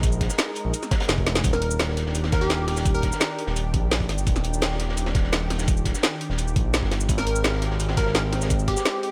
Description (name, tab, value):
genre	liquid drum and bass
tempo	170 BPM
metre	4/4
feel	straight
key	unclear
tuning	A4 = 439 Hz
part	lush unison pad	sustained chords	0.0-9.1 s	Eb3 to Bb4	-36 LUFS	equal	chorus, phaser, sidechain pumping
part	smooth gliding synth bass	bass	0.0-8.8 s	Eb1 to Bb1	-28 LUFS	equal	none
part	crunchy breakbeat drum kit	drums	0.0-9.1 s	hi-hat, snare drum	-36 LUFS	equal	high-pass filter on hats, studio reverb, high-pass filter on snare, high-pass filter on room
part	drum and bass drum kit	drums	0.0-9.1 s	cabasa, hi-hat, snare drum	-28 LUFS	equal	overdrive, studio reverb
part	electronic kick drum	drums	0.0-8.8 s	none	-26 LUFS	equal	overdrive, studio reverb
part	glassy wavetable pluck	melody	1.5-3.4, 7.2-9.1 s	G4 to Bb4	-31 LUFS	equal	chorus, digital delay
room	digital ambience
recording	none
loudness	-24 LUFS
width	mono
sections	0.0-9.1 A section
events	drum fill 1.3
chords	0.0 Bb7sus4; 1.4 Ebmaj7; 7.1 Abmaj7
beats	| 0.03 0.39 0.74 1.09 | 1.44 1.80 2.15 2.50 | 2.85 3.21 3.56 3.91 | 4.27 4.62 4.97 5.33 | 5.68 6.03 6.38 6.74 | 7.09 7.44 7.80 8.15 | 8.50 8.86